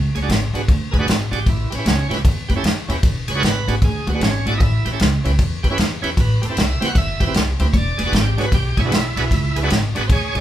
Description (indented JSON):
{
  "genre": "electric blues shuffle",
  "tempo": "153 BPM",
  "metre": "4/4",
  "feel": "swing 64% on 8ths",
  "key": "E mixolydian",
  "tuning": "A4 = 441 Hz",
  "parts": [
    { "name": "upright bass", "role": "bass", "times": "0.0-10.4 s", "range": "E1 to F#2", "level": "-20 LUFS", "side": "equal", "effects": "none" },
    { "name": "bright tonewheel organ", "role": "accompaniment", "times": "0.1-10.4 s", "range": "C4 to F#5", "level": "-23 LUFS", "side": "right 3 dB", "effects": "slow rotary speaker, overdrive" },
    { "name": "natural country drum kit", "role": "drums", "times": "0.2-10.4 s", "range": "kick drum, ride cymbal, snare drum", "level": "-19 LUFS", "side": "equal", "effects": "none" }
  ],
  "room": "light reverb",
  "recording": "band playing live in one room",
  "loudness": "-16 LUFS",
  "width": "side -12 dB against mid",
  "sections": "0.0-10.4 A section",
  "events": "none",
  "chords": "0.0 E7 (rootless); 1.5 A7; 3.0 E7; 4.6 A7; 6.2 Am7; 7.7 E7"
}